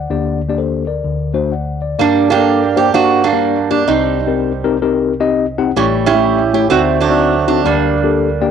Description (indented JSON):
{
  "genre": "gospel",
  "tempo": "127 BPM",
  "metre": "4/4",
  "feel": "swing 63% on 8ths",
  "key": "G harmonic minor",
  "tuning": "A4 = 441 Hz",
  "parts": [
    { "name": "mellow tine electric piano", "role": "accompaniment", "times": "0.0-8.5 s", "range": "A1 to G5", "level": "-16 LUFS", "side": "left 6 dB", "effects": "medium stereo tremolo, cassette tape" },
    { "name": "metal-body resonator slide guitar", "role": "melody", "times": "2.0-8.5 s", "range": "E3 to G4", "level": "-13 LUFS", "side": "right 8 dB", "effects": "cassette tape, tape echo" }
  ],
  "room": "moderate spring reverb, RT60 1.3 s, small room reverb",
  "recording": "home recording on cassette",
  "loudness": "-12 LUFS",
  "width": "side -7 dB against mid",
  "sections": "0.0-2.0 A section; 2.0-8.5 B section",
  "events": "tine electric piano fill 8.1-8.5",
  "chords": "0.1 Gm/D; 1.0 D7; 2.0 Gm; 3.9 Cm; 5.8 A7; 6.7 D7b9; 7.6 Gm/D"
}